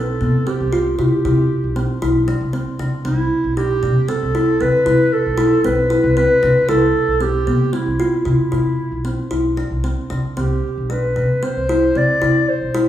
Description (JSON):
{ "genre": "contemporary instrumental, chamber music in an uneven meter", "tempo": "115 BPM", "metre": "7/4", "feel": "straight", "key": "C major", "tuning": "A4 = 440 Hz", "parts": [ { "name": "mellow clarinet", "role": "melody", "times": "0.0-12.9 s", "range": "E4 to D5", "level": "-18 LUFS", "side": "right 1 dB", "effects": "none" }, { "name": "kalimba", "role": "arpeggios", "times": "0.0-12.9 s", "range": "B3 to F4", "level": "-20 LUFS", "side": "left 2 dB", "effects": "none" }, { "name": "upright bass", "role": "bass", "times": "0.0-12.8 s", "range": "B1 to C3", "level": "-20 LUFS", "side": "equal", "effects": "none" } ], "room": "wet recital hall reverb, RT60 1.7 s", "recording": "recorded in a church or concert hall, studio reverb", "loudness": "-15 LUFS", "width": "side -11 dB against mid", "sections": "0.0-12.9 A section", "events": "none", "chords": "0.0 Cmaj7" }